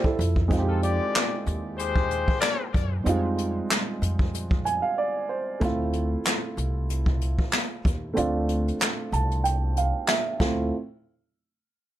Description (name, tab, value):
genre	hip hop, boom-bap hip-hop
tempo	94 BPM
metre	4/4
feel	swing 55% on 16ths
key	D minor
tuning	A4 = 441 Hz
part	dark upright piano	accompaniment	0.0-10.7 s	G3 to A5	-28 LUFS	right 3 dB	cassette tape, high-pass filter, low-pass filter
part	jazz brush drum kit	drums	0.0-10.6 s	handclaps, hi-hat, kick drum, snare drum	-26 LUFS	equal	none
part	upright bass	bass	0.2-10.7 s	C2 to F#2	-27 LUFS	equal	none
part	warm horn section	stabs	0.7-2.7 s	Ab3 to D5	-28 LUFS	left 5 dB	high-pass filter, low-pass filter, ping-pong delay
room	little or no reverb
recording	none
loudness	-23 LUFS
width	side -13 dB against mid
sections	0.0-5.6 A section; 5.6-10.7 B section; 10.7-12.0 C section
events	break 5.0-5.6; filter sweep on upright piano 5.6-10.7; kick muted 8.2-10.7; upright piano fill 8.8-10.7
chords	0.2 Fm9; 5.6 Dm9; 10.7 N.C.